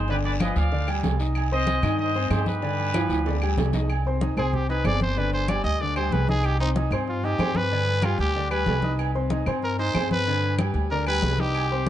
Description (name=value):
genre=latin, salsa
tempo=189 BPM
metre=4/4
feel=straight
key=C harmonic minor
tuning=A4 = 440 Hz
part: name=warm trumpet section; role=melody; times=0.0-3.4 s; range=G4 to F5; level=-29 LUFS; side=equal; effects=none
part: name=clear grand piano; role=accompaniment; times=0.0-11.8 s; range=D3 to Eb6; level=-29 LUFS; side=left 3 dB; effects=none
part: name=upright bass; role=bass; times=0.0-11.9 s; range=G1 to G2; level=-26 LUFS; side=equal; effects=none
part: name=agogo bells and timbales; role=percussion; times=0.1-11.9 s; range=none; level=-32 LUFS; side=right 7 dB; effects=none
part: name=congas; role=percussion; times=0.1-11.9 s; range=none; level=-30 LUFS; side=left 1 dB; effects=none
part: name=guiro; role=percussion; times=0.1-3.9 s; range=none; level=-42 LUFS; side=left 5 dB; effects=none
part: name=claves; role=percussion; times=0.4-11.7 s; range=none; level=-40 LUFS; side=left 2 dB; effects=none
part: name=growling trumpet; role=melody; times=4.4-11.9 s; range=Eb4 to Eb5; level=-27 LUFS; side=equal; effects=none
room=light reverb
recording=dark, warm production, nothing above 10.5 kHz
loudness=-22 LUFS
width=side -11 dB against mid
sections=0.0-3.9 A section; 3.9-11.9 B section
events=drum fill 2.9-3.9; trumpet solo 3.9-11.9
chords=0.1 G7(no3); 1.4 Cm; 2.6 G7; 3.9 Cm; 5.2 G5; 6.4 Cm; 7.7 G; 9.0 Cm; 10.3 G